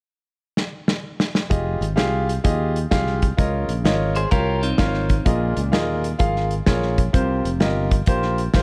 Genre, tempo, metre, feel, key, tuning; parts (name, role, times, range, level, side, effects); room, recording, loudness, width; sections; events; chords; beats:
uptempo gospel; 128 BPM; 4/4; swing 66% on 8ths; F minor; A4 = 440 Hz
modern studio drum kit; drums; 0.6-8.6 s; hi-hat, kick drum, snare drum; -23 LUFS; equal
clear concert grand piano; accompaniment; 1.5-8.6 s; Bb2 to F5; -26 LUFS; equal
fingered electric bass; bass; 1.5-8.6 s; F1 to Eb2; -26 LUFS; equal
clean electric guitar; second line; 4.2-5.2 s; C4 to C5; -29 LUFS; equal
light reverb, small room reverb; -21 LUFS; mono
0.0-1.5 A section; 1.5-8.6 B section
drum fill 0.6-1.5
0.0 N.C.; 1.5 Fm9; 3.4 Db69; 5.3 Bb7sus4; 7.1 C7sus4
0.10 0.57 1.04 | 1.51 1.98 2.45 2.92 | 3.39 3.86 4.33 4.79 | 5.26 5.73 6.20 6.67 | 7.14 7.61 8.08 8.55